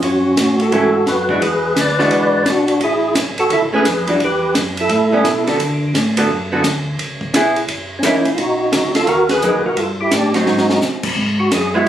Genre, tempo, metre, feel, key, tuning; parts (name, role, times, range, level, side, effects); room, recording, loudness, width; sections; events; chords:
soul jazz organ trio; 172 BPM; 4/4; swing 64% on 8ths; F# minor; A4 = 440 Hz
percussive tonewheel organ; melody; 0.0-5.4, 8.0-11.9 s; C#4 to D5; -16 LUFS; equal; slow rotary speaker, chorus vibrato
archtop guitar, miked and amplified; accompaniment; 0.0-11.9 s; D3 to B4; -18 LUFS; right 1 dB
mellow tonewheel organ; bass; 0.0-11.9 s; F#1 to D3; -23 LUFS; equal; slow rotary speaker
compact cocktail drum kit; drums; 0.0-11.9 s; crash cymbal, hi-hat, kick drum, ride cymbal, snare drum; -20 LUFS; equal
moderate large studio reverb, RT60 1.2 s; recorded on a phone in the room, club ambience; -14 LUFS; side -11 dB against mid
0.0-11.2 A section
band accent 9.2; drum fill 10.5-10.8
0.0 F#m7; 1.4 E9; 2.8 Amaj9; 4.2 Emadd9; 4.9 A9; 5.6 D6; 7.0 C#m7; 7.7 F#6; 8.4 Bmaj7; 9.8 Gsus2; 10.5 G#7; 11.2 Eadd9